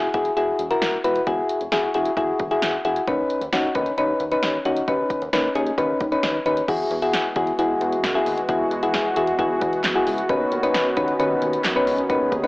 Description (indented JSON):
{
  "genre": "synth-pop",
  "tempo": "133 BPM",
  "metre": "4/4",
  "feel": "straight",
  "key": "unclear",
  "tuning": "A4 = 442 Hz",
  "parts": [
    { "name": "soft electric-piano-like synth keys", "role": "accompaniment", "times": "0.0-12.5 s", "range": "C#4 to B4", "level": "-20 LUFS", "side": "left 1 dB", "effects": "chorus, cassette tape" },
    { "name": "chorused synth bass", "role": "bass", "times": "0.0-12.5 s", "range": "E1 to F#2", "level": "-30 LUFS", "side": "equal", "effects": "none" },
    { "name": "punchy analog drum machine", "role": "drums", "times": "0.1-12.5 s", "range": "crash cymbal, handclaps, hi-hat, kick drum, snare drum", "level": "-27 LUFS", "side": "equal", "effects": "cassette tape" },
    { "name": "warm analog pad", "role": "sustained chords", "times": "6.7-12.5 s", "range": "D#3 to G#4", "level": "-26 LUFS", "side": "right 1 dB", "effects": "chorus, cassette tape" }
  ],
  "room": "light reverb, digital ambience",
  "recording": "home recording on cassette, AM radio sound",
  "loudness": "-19 LUFS",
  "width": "side -22 dB against mid",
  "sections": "0.0-6.7 A section; 6.7-12.5 B section",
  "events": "none",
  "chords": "0.0 Eadd9; 3.1 Badd9/D#; 6.7 Eadd9",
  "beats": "0.37 0.82 | 1.27 1.72 2.17 2.62 | 3.08 3.53 3.98 4.43 | 4.88 5.33 5.78 6.23 | 6.68 7.13 7.59 8.04 | 8.49 8.94 9.39 9.84 | 10.29 10.74 11.20 11.65 | 12.10"
}